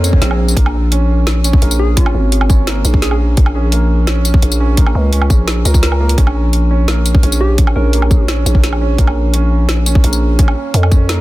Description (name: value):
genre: half-time drum and bass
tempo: 171 BPM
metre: 4/4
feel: half-time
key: unclear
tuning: A4 = 440 Hz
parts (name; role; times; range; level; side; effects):
- felt-muted upright piano; arpeggios; 0.0-11.2 s; Bb3 to Bb4; -22 LUFS; right 3 dB; vintage 12-bit sampler grit, digital delay
- growling 808-style bass; bass; 0.0-11.2 s; Ab1 to F2; -13 LUFS; equal; none
- drum and bass drum kit; drums; 0.0-11.2 s; hi-hat, snare drum, tambourine, woodblock; -21 LUFS; right 1 dB; none
- swell; sound effects; 0.0-0.6 s; none; -27 LUFS; equal; none
- electronic kick drum; drums; 0.1-11.0 s; none; -10 LUFS; equal; none
- soft struck synth lead; melody; 1.8-3.2, 7.4-8.3 s; F4 to Bb4; -24 LUFS; equal; chorus, digital delay
room: little or no reverb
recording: dense, heavily limited modern master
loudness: -10 LUFS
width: side -17 dB against mid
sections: 0.0-11.2 A section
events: swell 0.0-0.6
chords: 0.0 F5; 0.6 Db5; 6.2 Bbm